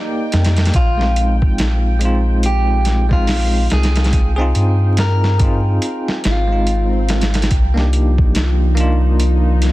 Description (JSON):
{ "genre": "trip hop", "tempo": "71 BPM", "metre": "4/4", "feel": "swing 60% on 16ths", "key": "unclear", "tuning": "A4 = 440 Hz", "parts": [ { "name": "clean electric guitar", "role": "melody", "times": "0.0-7.4 s", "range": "Eb4 to Bb4", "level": "-24 LUFS", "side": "equal", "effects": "dub echo" }, { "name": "bell-like tine electric piano", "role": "accompaniment", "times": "0.0-9.7 s", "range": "Ab3 to D5", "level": "-22 LUFS", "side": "equal", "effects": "tremolo, tape echo" }, { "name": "bowed-like drone", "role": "texture", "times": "0.0-9.7 s", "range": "Eb4 to G5", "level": "-31 LUFS", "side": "right 2 dB", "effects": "built-in reverb" }, { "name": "soft dub sub bass", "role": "bass", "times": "0.3-9.7 s", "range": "Ab1 to G2", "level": "-15 LUFS", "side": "equal", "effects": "none" }, { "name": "boom bap sampler-style drum kit", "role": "drums", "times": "0.3-9.7 s", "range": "hi-hat, kick drum, snare drum", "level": "-18 LUFS", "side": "equal", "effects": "vintage 12-bit sampler grit" }, { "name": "swell", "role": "sound effects", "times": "6.2-7.5 s", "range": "none", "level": "-31 LUFS", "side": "right 2 dB", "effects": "none" }, { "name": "dark analog pad", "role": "sustained chords", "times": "7.5-9.7 s", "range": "F3 to F4", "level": "-24 LUFS", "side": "right 1 dB", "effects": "chorus, vintage 12-bit sampler grit" } ], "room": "digital ambience", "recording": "dense, heavily limited modern master, vinyl crackle", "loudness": "-13 LUFS", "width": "side -17 dB against mid", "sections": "0.0-7.5 A section; 7.5-9.7 B section", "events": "swell 6.2-7.5", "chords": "0.0 Cm7 (rootless); 0.8 Bb7sus4; 7.5 Cm7" }